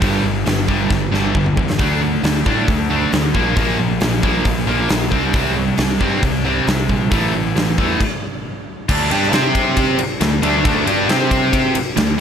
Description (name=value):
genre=hard rock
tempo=135 BPM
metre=4/4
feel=straight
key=D minor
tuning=A4 = 441 Hz
part: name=crunchy overdriven guitar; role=riff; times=0.0-12.2 s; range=G2 to C5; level=-21 LUFS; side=right 9 dB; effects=none
part: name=scooped high-gain guitar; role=riff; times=0.0-12.2 s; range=G2 to C5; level=-20 LUFS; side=left 10 dB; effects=distortion
part: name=fuzz picked electric bass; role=bass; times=0.0-12.2 s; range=G1 to C3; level=-22 LUFS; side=equal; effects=overdrive
part: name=huge arena drum kit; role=drums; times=0.0-12.1 s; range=crash cymbal, hi-hat, kick drum, ride cymbal, snare drum, toms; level=-20 LUFS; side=equal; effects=none
part: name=cranked stack guitar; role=riff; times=8.9-12.1 s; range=D3 to C5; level=-21 LUFS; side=equal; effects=overdrive
room=light reverb, small room reverb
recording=none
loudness=-14 LUFS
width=side -8 dB against mid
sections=0.0-8.9 A section; 8.9-12.2 B section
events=drum fill 0.9-1.8; stop 8.0-8.9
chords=0.0 G5; 1.8 D5; 3.3 Bb5; 5.1 C5; 7.1 A5; 8.9 D5; 9.3 C5; 10.0 D5; 11.1 C5